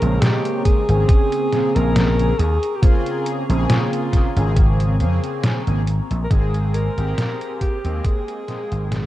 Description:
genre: vaporwave.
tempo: 69 BPM.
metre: 4/4.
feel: swing 54% on 16ths.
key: Bb dorian.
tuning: A4 = 440 Hz.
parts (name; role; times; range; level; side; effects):
warm alto saxophone; melody; 0.0-9.1 s; F4 to Bb4; -25 LUFS; equal; tape echo.
mellow synth brass; accompaniment; 0.0-9.1 s; Db3 to Ab4; -25 LUFS; right 1 dB; lush chorus.
warbly tape-like pad; sustained chords; 0.0-9.1 s; C4 to Db6; -33 LUFS; equal; chorus, built-in reverb.
vintage slap bass; bass; 0.0-9.1 s; Ab1 to F2; -18 LUFS; equal; none.
detuned 8-bit digital drum machine; drums; 0.0-9.1 s; hi-hat, snare drum; -22 LUFS; equal; vintage 12-bit sampler grit.
electronic kick drum; drums; 0.7-8.2 s; none; -16 LUFS; equal; vintage 12-bit sampler grit.
room: light reverb, digital ambience.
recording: dark, warm production, cassette tape.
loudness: -16 LUFS.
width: side -15 dB against mid.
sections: 0.0-9.1 A section.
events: fade-out 4.0-9.1.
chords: 0.0 Bbm9; 6.3 Abmaj9.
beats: 0.22 1.09 1.96 | 2.83 3.70 4.57 5.44 | 6.31 7.18 8.05 8.91.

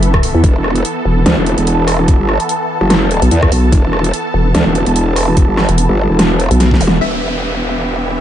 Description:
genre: heavy wobble dubstep.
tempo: 146 BPM.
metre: 4/4.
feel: swing 55% on 16ths, half-time.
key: E minor.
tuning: A4 = 440 Hz.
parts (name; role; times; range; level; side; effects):
supersaw chords; sustained chords; 0.0-8.2 s; E3 to A5; -18 LUFS; right 1 dB; phaser, sidechain pumping, low-pass filter.
vowel-sweep wobble bass; bass; 0.0-7.0 s; E1 to E2; -11 LUFS; equal; chorus, overdrive.
dubstep drum kit; drums; 0.0-8.2 s; hi-hat, rim click, snare drum; -17 LUFS; equal; overdrive, low-pass filter on hats, low-pass filter on snare, low-pass filter on room.
electronic kick drum; drums; 0.1-6.8 s; none; -12 LUFS; equal; overdrive.
growl bass; bass; 0.4-8.2 s; E1 to E2; -14 LUFS; equal; chorus, overdrive.
zap and downlifter; sound effects; 6.8-8.2 s; none; -22 LUFS; equal; none.
wide unison pluck; melody; 7.0-7.6 s; E5; -23 LUFS; left 4 dB; analog chorus, digital delay.
room: light reverb, digital ambience.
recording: nothing above 10.3 kHz.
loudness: -10 LUFS.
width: side -11 dB against mid.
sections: 0.0-7.0 A section; 7.0-8.2 B section.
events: drop 0.0-7.0; drum fill 6.6-7.0; band accent 6.9.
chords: 0.0 E5; 7.0 Em.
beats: 0.03 | 0.44 0.85 1.26 1.67 | 2.08 2.49 2.90 3.31 | 3.73 4.13 4.55 4.96 | 5.37 5.78 6.19 6.60 | 7.01 7.42 7.83.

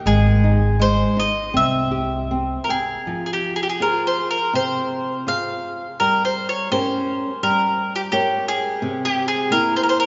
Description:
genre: fado-style ballad.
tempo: 76-87 BPM.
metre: 4/4.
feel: rubato.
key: F harmonic minor from 3.1 s.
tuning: A4 = 438 Hz.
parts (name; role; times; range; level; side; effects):
flamenco guitar; accompaniment; 0.0-10.1 s; C3 to G5; -26 LUFS; equal; none.
bowl-back mandolin; melody; 0.1-10.1 s; G4 to F5; -23 LUFS; equal; none.
upright bass; bass; 0.1-2.5 s; Ab1 to C2; -22 LUFS; equal; none.
room: wet church reverb, RT60 3.4 s.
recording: recorded in a church or concert hall, nothing above 7.5 kHz.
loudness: -20 LUFS.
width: mono.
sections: 0.0-3.1 A section; 3.1-10.1 B section.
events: none.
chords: 0.1 Ab5; 1.5 C; 3.1 Fm; 6.0 Gdim; 8.8 C7.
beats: | 0.05 0.79 1.53 2.30 | 3.06 3.81 4.54 5.27 | 6.00 6.72 7.43 8.13 | 8.83 9.53.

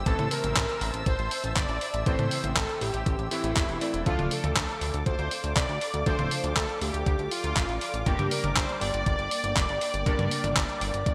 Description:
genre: italo disco.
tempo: 120 BPM.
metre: 4/4.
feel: straight.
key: D minor.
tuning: A4 = 440 Hz.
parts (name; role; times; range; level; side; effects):
analog synth brass; melody; 0.0-11.1 s; E4 to D5; -34 LUFS; equal; chorus, digital delay.
dark studio string section; sustained chords; 0.0-11.1 s; Bb3 to E6; -39 LUFS; equal; none.
chorused synth bass; bass; 0.0-11.1 s; D1 to A2; -34 LUFS; equal; none.
bright electric grand piano; stabs; 0.1-11.1 s; G2 to A5; -38 LUFS; equal; lush chorus.
clean 12-bit digital drum machine; drums; 0.1-11.1 s; handclaps, hi-hat, toms; -32 LUFS; equal; gated reverb.
electronic kick drum; drums; 0.1-11.1 s; none; -31 LUFS; equal; none.
room: light reverb, digital ambience.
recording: bright 1980s-style digital production.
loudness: -27 LUFS.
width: mono.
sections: 0.0-11.1 A section.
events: none.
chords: 0.1 Am; 4.1 Dm; 8.1 Gm.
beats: | 0.06 0.56 1.06 1.56 | 2.06 2.56 3.06 3.56 | 4.06 4.56 5.06 5.56 | 6.06 6.56 7.06 7.56 | 8.06 8.56 9.06 9.56 | 10.06 10.56 11.06.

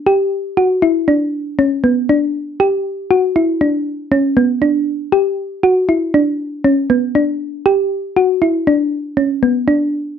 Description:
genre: progressive instrumental, progressive.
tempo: 119 BPM.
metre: 5/4.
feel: straight.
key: E dorian.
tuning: A4 = 440 Hz.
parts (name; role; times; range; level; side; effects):
thumb-piano-like synth pluck; solo; 0.1-10.0 s; B3 to G4; -13 LUFS; equal; chorus.
room: moderate studio reverb, RT60 0.5 s.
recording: none.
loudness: -13 LUFS.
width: side -8 dB against mid.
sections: 0.0-10.2 A section.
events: none.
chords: none.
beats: | 0.07 0.57 1.08 1.59 2.10 | 2.60 3.11 3.61 4.12 4.63 | 5.13 5.64 6.14 6.65 7.15 | 7.66 8.16 8.67 9.17 9.68.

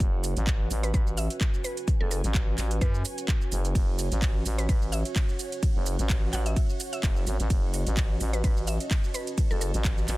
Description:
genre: bass house.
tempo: 128 BPM.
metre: 4/4.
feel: swing 55% on 16ths.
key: F# dorian.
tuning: A4 = 437 Hz.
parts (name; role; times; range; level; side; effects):
dark analog pad; sustained chords; 0.0-10.2 s; C#4 to D#5; -39 LUFS; right 2 dB; chorus, sidechain pumping.
growling FM bass; bass; 0.0-10.2 s; F#1 to F#2; -28 LUFS; equal; overdrive, sidechain pumping.
electronic kick drum; drums; 0.0-9.9 s; none; -25 LUFS; equal; none.
house drum kit; drums; 0.0-10.2 s; handclaps, hi-hat, ride cymbal, shaker; -35 LUFS; right 2 dB; none.
ethereal airy pad; texture; 0.0-10.2 s; F#4 to A5; -40 LUFS; right 2 dB; ensemble chorus, built-in reverb, tremolo, sidechain pumping.
mallet-like synth pluck; melody; 0.8-9.7 s; A4 to F#5; -38 LUFS; left 1 dB; chorus, tape echo.
room: digital ambience.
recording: dense, heavily limited modern master.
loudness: -24 LUFS.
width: side -19 dB against mid.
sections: 0.0-10.2 A section.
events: none.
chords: 0.0 F#5.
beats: | 0.00 0.47 0.94 1.41 | 1.88 2.35 2.81 3.28 | 3.75 4.22 4.69 5.16 | 5.63 6.09 6.56 7.03 | 7.50 7.97 8.44 8.91 | 9.38 9.85.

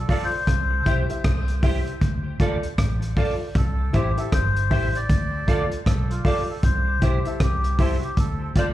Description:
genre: roots reggae.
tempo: 78 BPM.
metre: 4/4.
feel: swing 62% on 16ths.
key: unclear.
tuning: A4 = 440 Hz.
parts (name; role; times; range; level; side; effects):
melodica; melody; 0.0-8.7 s; F4 to D5; -29 LUFS; left 2 dB; dub echo, slapback echo.
vintage muted fingered electric bass; bass; 0.0-8.7 s; G1 to D2; -24 LUFS; equal; none.
clean electric guitar; accompaniment; 0.1-8.7 s; E4 to D5; -32 LUFS; right 4 dB; ensemble chorus, dub echo, slapback echo.
dark upright piano; stabs; 0.1-8.7 s; E4 to F5; -31 LUFS; left 3 dB; slapback echo.
crunchy breakbeat drum kit; drums; 0.1-8.7 s; hi-hat, kick drum, rim click; -23 LUFS; equal; none.
room: small room ambience.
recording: live gig heard through the venue's PA, club reverb.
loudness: -20 LUFS.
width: side -14 dB against mid.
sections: 0.0-8.7 A section.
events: melodica solo 0.0-8.7.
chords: 0.5 C; 2.0 Dm; 3.6 C; 5.1 Dm; 6.6 C; 8.2 Dm.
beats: 0.48 1.25 | 2.02 2.79 3.56 4.33 | 5.09 5.87 6.63 7.41 | 8.18.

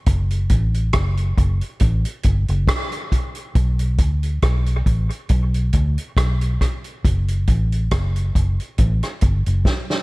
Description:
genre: dub reggae.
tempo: 69 BPM.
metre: 4/4.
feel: swing 55% on 16ths.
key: unclear.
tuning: A4 = 440 Hz.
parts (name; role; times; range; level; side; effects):
vintage muted fingered electric bass; bass; 0.1-9.6 s; F#1 to D2; -18 LUFS; equal; none.
vintage drum kit; drums; 0.1-10.0 s; hi-hat, kick drum, rim click, snare drum; -20 LUFS; equal; none.
room: little or no reverb.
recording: none.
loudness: -17 LUFS.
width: side -22 dB against mid.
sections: 0.0-10.0 A section.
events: drum fill 9.7-10.0.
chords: none.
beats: | 0.07 0.94 1.81 2.69 | 3.56 4.43 5.30 6.17 | 7.04 7.92 8.79 9.66.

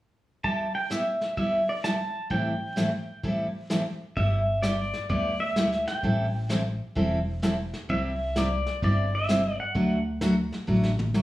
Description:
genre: country, western swing.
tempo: 129 BPM.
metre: 4/4.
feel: swing 66% on 8ths.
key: G major.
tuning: A4 = 442 Hz.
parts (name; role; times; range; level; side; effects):
pedal steel guitar; melody; 0.4-10.0 s; D5 to A5; -28 LUFS; equal; none.
picked steel-string acoustic guitar; accompaniment; 0.4-11.2 s; A2 to A4; -27 LUFS; equal; none.
vintage brush drum kit; drums; 0.4-11.2 s; brushed snare drum, hi-hat, kick drum, snare drum, toms; -34 LUFS; left 1 dB; none.
upright bass; bass; 4.2-11.2 s; E1 to D2; -29 LUFS; equal; none.
room: wet studio reverb, RT60 0.9 s.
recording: studio reverb.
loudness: -24 LUFS.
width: side -16 dB against mid.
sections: 0.4-4.2 A section; 4.2-11.2 B section.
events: drum fill 10.7-11.2.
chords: 0.4 G6; 2.3 Am7; 4.2 G6; 6.0 Am7; 7.9 C; 9.8 D.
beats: | 0.44 0.91 1.37 1.84 | 2.31 2.77 3.24 3.70 | 4.17 4.63 5.10 5.56 | 6.03 6.49 6.96 7.42 | 7.89 8.36 8.82 9.29 | 9.75 10.22 10.68 11.15.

